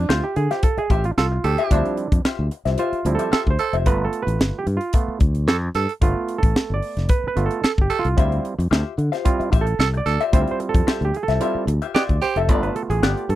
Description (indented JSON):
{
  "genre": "funk",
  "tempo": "111 BPM",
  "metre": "4/4",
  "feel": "straight",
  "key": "D dorian",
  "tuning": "A4 = 440 Hz",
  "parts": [
    { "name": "mellow clav", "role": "stabs", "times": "0.0-13.4 s", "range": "F3 to D5", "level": "-24 LUFS", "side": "right 4 dB", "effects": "none" },
    { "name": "fingered electric bass", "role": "bass", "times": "0.0-13.4 s", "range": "F1 to D3", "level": "-22 LUFS", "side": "equal", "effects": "none" },
    { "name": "vintage hollow-body jazz guitar", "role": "accompaniment", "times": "0.1-3.9, 8.2-13.3 s", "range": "B3 to F5", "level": "-26 LUFS", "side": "left 10 dB", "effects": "wah" },
    { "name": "tight funk drum kit", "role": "drums", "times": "0.1-13.4 s", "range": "hi-hat, kick drum, snare drum", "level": "-19 LUFS", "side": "equal", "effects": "none" },
    { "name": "growling tenor saxophone", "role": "second line", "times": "1.2-12.4 s", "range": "G4 to A4", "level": "-22 LUFS", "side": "right 7 dB", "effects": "none" }
  ],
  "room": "little or no reverb",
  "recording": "dry, close 1970s-style studio recording",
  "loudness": "-18 LUFS",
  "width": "side -14 dB against mid",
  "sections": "0.0-13.4 A section",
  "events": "clav solo 0.0-13.4",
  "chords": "0.0 Dm11; 3.9 G9; 8.2 Dm11; 12.5 G9",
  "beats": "0.09 0.63 1.17 | 1.71 2.25 2.79 3.33 | 3.86 4.40 4.94 5.48 | 6.02 6.56 7.10 7.64 | 8.18 8.72 9.26 9.79 | 10.33 10.87 11.41 11.95 | 12.49 13.03"
}